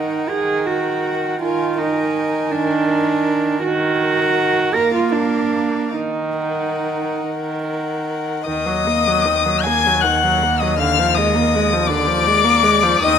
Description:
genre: classical, slow romantic movement for string quartet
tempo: 47-57 BPM (dotted quarters)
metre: 6/8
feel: rubato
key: Eb minor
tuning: A4 = 441 Hz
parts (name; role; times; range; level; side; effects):
- dark violin; melody; 0.0-13.2 s; F5 to Ab6; -21 LUFS; left 10 dB; none
- rich violin; second line; 0.0-13.2 s; Bb4 to Ab5; -23 LUFS; left 3 dB; none
- rich viola; accompaniment; 0.0-13.2 s; D3 to Bb3; -22 LUFS; right 2 dB; none
- warm cello; bass; 0.0-13.2 s; Eb2 to Bb4; -20 LUFS; right 4 dB; none
room: moderate scoring stage reverb, RT60 1.6 s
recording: none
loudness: -16 LUFS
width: side -7 dB against mid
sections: 0.0-8.5 A section; 8.5-13.2 A section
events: none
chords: 0.0 Ebm; 1.4 Bb7/Eb; 3.6 Ebm; 4.7 Bb; 6.0 Ebm; 10.8 Bb7/Eb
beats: 0.30 | 1.42 2.52 | 3.63 4.75 | 5.96 7.23 | 8.47 9.64 | 10.79 11.89 | 13.02

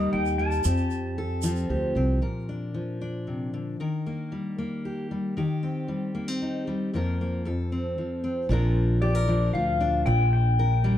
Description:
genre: acoustic folk duo or small band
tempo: 115 BPM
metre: 3/4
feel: straight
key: Bb major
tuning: A4 = 438 Hz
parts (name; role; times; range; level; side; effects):
- pedal steel guitar; melody; 0.0-1.6, 9.0-11.0 s; D5 to A5; -28 LUFS; left 4 dB; slapback echo
- fingerpicked steel-string acoustic guitar; accompaniment; 0.0-11.0 s; F2 to Bb4; -27 LUFS; left 1 dB; none
- upright bass; bass; 0.0-2.2, 8.5-11.0 s; Bb1 to F2; -25 LUFS; right 1 dB; none
- tube shaker; percussion; 0.3-1.6 s; none; -38 LUFS; right 10 dB; none
room: light reverb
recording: dark, warm production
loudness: -24 LUFS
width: side -11 dB against mid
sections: 0.0-2.2 A section; 2.2-8.5 B section; 8.5-11.0 A section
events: none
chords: 0.0 Eb; 0.6 Fadd9; 2.2 Bb; 3.8 Eb; 5.4 Cm/Eb; 6.9 Fsus4; 7.4 F; 8.5 Bb; 10.1 Gm/Bb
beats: 0.12 | 0.64 1.17 1.69 | 2.21 2.73 3.26 | 3.78 4.31 4.83 | 5.36 5.88 6.40 | 6.92 7.45 7.97 | 8.49 9.01 9.53 | 10.05 10.57

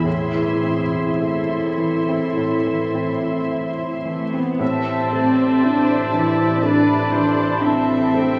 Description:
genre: classical, romantic movement for piano and orchestra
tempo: 51-61 BPM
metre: 4/4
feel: rubato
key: A minor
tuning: A4 = 439 Hz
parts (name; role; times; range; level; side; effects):
- clear grand piano; melody; 0.0-8.4 s; A2 to E5; -26 LUFS; equal; none
- muted studio violin section; melody; 0.0-8.4 s; E5 to C6; -36 LUFS; equal; none
- mellow clarinet; second line; 0.0-4.1 s; G#4 to A4; -31 LUFS; equal; none
- muted studio violin section; second line; 0.0-8.4 s; C5 to E5; -34 LUFS; equal; none
- muted studio viola section; accompaniment; 0.0-8.4 s; E4 to C5; -33 LUFS; equal; none
- mellow French horn section; sustained chords; 0.0-8.4 s; A3 to E4; -26 LUFS; equal; none
- muted studio cello section; bass; 0.0-8.4 s; A2 to E4; -25 LUFS; equal; none
- bright oboe; second line; 4.6-8.4 s; C5 to E5; -30 LUFS; equal; none
- hollow flute section; second line; 4.6-8.4 s; G5 to B5; -28 LUFS; equal; none
- mellow bassoon; accompaniment; 4.6-8.4 s; C3; -32 LUFS; equal; none
- muted studio double bass section; bass; 4.6-8.4 s; A1; -32 LUFS; equal; none
room: wet cathedral reverb, RT60 5.6 s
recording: recorded in a church or concert hall, small room ambience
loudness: -20 LUFS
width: mono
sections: 0.0-4.6 A section; 4.6-8.4 B section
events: none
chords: 0.1 Am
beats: | 0.06 1.22 2.38 3.50 | 4.61 5.64 6.63 7.63

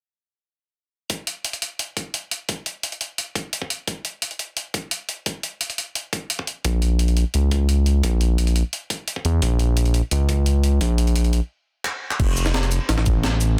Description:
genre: liquid drum and bass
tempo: 173 BPM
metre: 4/4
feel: straight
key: unclear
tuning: A4 = 442 Hz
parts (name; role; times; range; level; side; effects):
- breakbeat sampler-style drum kit; drums; 1.1-13.5 s; cabasa, crash cymbal, handclaps, hi-hat, snare drum; -28 LUFS; equal; small room ambience
- electronic kick drum; drums; 1.1-13.1 s; none; -28 LUFS; equal; high-pass filter on kick, small room ambience, high-pass filter on room
- smooth synth bass; bass; 6.6-13.6 s; F1 to E2; -20 LUFS; equal; none
room: little or no reverb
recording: dense, heavily limited modern master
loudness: -23 LUFS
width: mono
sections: 1.1-12.2 A section; 12.2-13.6 B section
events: stop 11.5-12.2; drum fill 11.9-12.2; drop 12.2-13.6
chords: none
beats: | 1.10 1.45 1.79 2.14 | 2.49 2.83 3.18 3.53 | 3.87 4.22 4.57 4.92 | 5.26 5.61 5.96 6.30 | 6.65 7.00 7.34 7.69 | 8.04 8.38 8.73 9.08 | 9.42 9.77 10.12 10.46 | 10.81 11.16 11.50 11.85 | 12.20 12.54 12.89 13.24

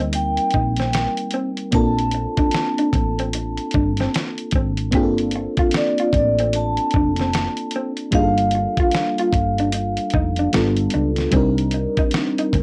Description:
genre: R&B, neo-soul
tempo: 75 BPM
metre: 4/4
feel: swing 62% on 16ths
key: C dorian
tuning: A4 = 442 Hz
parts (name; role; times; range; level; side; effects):
- electric guitar through a small old amp; second line; 0.0-12.6 s; Bb3 to G4; -26 LUFS; equal; cassette tape
- mellow FM electric piano; accompaniment; 0.0-12.6 s; G3 to Bb4; -25 LUFS; equal; chorus, cassette tape
- woody fretless electric bass; bass; 0.0-12.6 s; F1 to D2; -26 LUFS; equal; none
- dusty soul sampler-style drum kit; drums; 0.1-12.6 s; hi-hat, kick drum, snare drum; -25 LUFS; equal; cassette tape
- vibraphone with soft mallets; melody; 0.2-10.5 s; D5 to A5; -26 LUFS; equal; none
room: light reverb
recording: home recording on cassette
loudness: -20 LUFS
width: mono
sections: 0.0-12.6 A section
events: none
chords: 0.0 Cm9; 1.7 Bbmaj9; 4.9 Gm11; 8.1 Ebmaj9#11/G (rootless); 10.5 G7; 11.3 Cm9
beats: 0.13 0.93 | 1.73 2.53 3.33 4.13 | 4.93 5.73 6.53 7.33 | 8.13 8.93 9.73 10.53 | 11.33 12.13

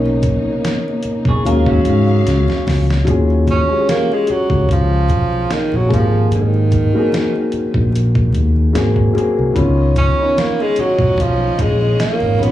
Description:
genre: R&B, neo-soul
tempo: 74 BPM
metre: 4/4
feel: swing 56% on 16ths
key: Eb minor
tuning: A4 = 440 Hz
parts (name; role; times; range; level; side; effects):
- dark upright piano; accompaniment; 0.0-12.5 s; Eb3 to F5; -19 LUFS; left 2 dB; none
- warm symphonic string section; sustained chords; 0.0-3.1, 9.6-12.5 s; B2 to F5; -26 LUFS; left 1 dB; none
- fingered electric bass; bass; 0.0-12.5 s; Ab1 to Ab2; -15 LUFS; equal; none
- congas; percussion; 0.1-12.5 s; none; -29 LUFS; left 1 dB; none
- boom bap sampler-style drum kit; drums; 0.2-12.5 s; hi-hat, kick drum, snare drum; -20 LUFS; equal; none
- electric guitar through a small old amp; second line; 1.3-2.9 s; Db4 to C#5; -23 LUFS; right 4 dB; slapback echo, tape echo
- clear tenor saxophone; melody; 3.5-12.5 s; Eb3 to Db4; -18 LUFS; right 2 dB; slapback echo, tape echo
room: light reverb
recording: live gig heard through the venue's PA, club reverb, small room ambience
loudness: -13 LUFS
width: side -13 dB against mid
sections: 0.0-3.1 A section; 3.1-12.5 B section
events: upright piano solo 0.0-3.1; drum fill 2.3-3.1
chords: 0.0 Bmaj9; 1.4 Ebm11; 5.9 Ab9; 9.6 Db9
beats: 0.64 1.45 2.26 | 3.07 3.88 4.69 5.50 | 6.31 7.12 7.93 8.74 | 9.55 10.37 11.18 11.99

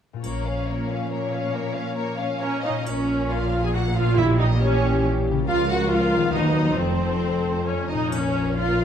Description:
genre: classical, dramatic, fast romantic movement for symphony orchestra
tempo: 137 BPM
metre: 3/4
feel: rubato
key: Bb minor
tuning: A4 = 440 Hz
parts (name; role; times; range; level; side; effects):
- concert harp; arpeggios; 0.1-8.8 s; Bb2 to Db5; -30 LUFS; left 6 dB; none
- warm symphonic violin section; melody; 0.2-8.8 s; G4 to F5; -34 LUFS; left 5 dB; none
- rich studio violin section; second line; 0.2-8.8 s; Bb4 to Ab5; -31 LUFS; left 2 dB; none
- rich symphonic viola section; accompaniment; 0.2-8.8 s; Bb3 to Ab4; -25 LUFS; right 2 dB; none
- warm French horn section; sustained chords; 0.2-8.8 s; Fb3 to B4; -29 LUFS; left 4 dB; none
- rich symphonic cello section; bass; 0.2-8.8 s; Db2 to Bb2; -29 LUFS; right 3 dB; none
- rich symphonic double bass section; bass; 0.2-0.7, 2.9-8.8 s; F1 to D#2; -27 LUFS; right 2 dB; none
- triangle; percussion; 0.2-3.7, 8.1-8.8 s; none; -45 LUFS; left 2 dB; none
- timpani; percussion; 4.2-4.8 s; Bb2; -26 LUFS; right 1 dB; none
room: moderate recital hall reverb, RT60 1.6 s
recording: dark, warm production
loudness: -20 LUFS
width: side -8 dB against mid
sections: 0.2-2.9 A section; 2.9-8.8 B section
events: none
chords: 0.2 Bbm; 4.2 Bbdim7; 5.5 Bbm/Db; 6.3 B/D#; 6.8 F; 8.1 Bbm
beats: | 0.24 0.68 1.12 | 1.54 1.96 2.40 | 2.87 3.31 3.75 | 4.18 4.61 5.05 | 5.48 5.91 6.34 | 6.78 7.23 7.68 | 8.12 8.57

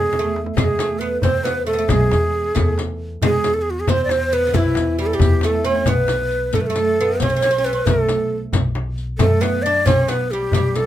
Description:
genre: Persian modal ensemble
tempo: 90 BPM (dotted quarters)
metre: 6/8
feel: straight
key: E dastgah homayun, B dastgah shur from 5.9 s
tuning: A4 = 441 Hz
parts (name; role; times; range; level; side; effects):
- breathy ney; melody; 0.0-10.9 s; E4 to D5; -19 LUFS; right 1 dB; none
- oud; second line; 0.0-10.9 s; D3 to D4; -24 LUFS; right 3 dB; none
- upright bass; bass; 0.0-10.9 s; B1 to F#2; -23 LUFS; left 1 dB; none
- frame drum; percussion; 0.1-10.9 s; none; -23 LUFS; left 2 dB; none
- tombak; percussion; 0.1-10.9 s; none; -23 LUFS; right 1 dB; none
- riq; percussion; 0.6-10.9 s; none; -30 LUFS; left 8 dB; none
room: moderate studio ambience, RT60 0.5 s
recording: minimal, uncompressed stereo recording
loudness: -16 LUFS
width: side -12 dB against mid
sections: 0.0-5.9 A section; 5.9-10.9 B section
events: drum fill 0.1-0.6, 5.4-5.9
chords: none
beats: | 0.57 1.24 | 1.90 2.56 | 3.23 3.89 | 4.55 5.22 | 5.88 6.55 | 7.21 7.88 | 8.54 9.20 | 9.87 10.53

